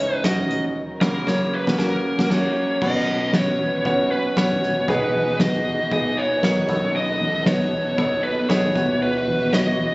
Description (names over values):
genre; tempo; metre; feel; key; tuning
piano-driven pop; 116 BPM; 4/4; swing 56% on 16ths; B major; A4 = 440 Hz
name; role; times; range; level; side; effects
lead guitar through a small cranked amp; melody; 0.0-9.9 s; A#4 to D#5; -23 LUFS; equal; overdrive
clear baby grand piano; accompaniment; 0.0-9.9 s; B1 to C#5; -24 LUFS; equal; none
dark studio string section; sustained chords; 0.0-9.9 s; E2 to D#5; -30 LUFS; equal; none
soft-mallet drum kit; drums; 0.2-9.9 s; crash cymbal, hi-hat, kick drum, ride cymbal, snare drum, toms; -24 LUFS; equal; none
room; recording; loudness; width
moderate lush hall reverb, RT60 1.6 s, small room reverb; recorded on a phone in the room, club reverb, nothing above 7.8 kHz; -18 LUFS; side -22 dB against mid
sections
0.0-2.8 A section; 2.8-9.9 B section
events
band accent 0.8-2.8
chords
0.0 C#madd9; 0.8 F#; 2.8 Bsus2; 4.9 G#m/B; 6.7 B7; 8.8 Esus2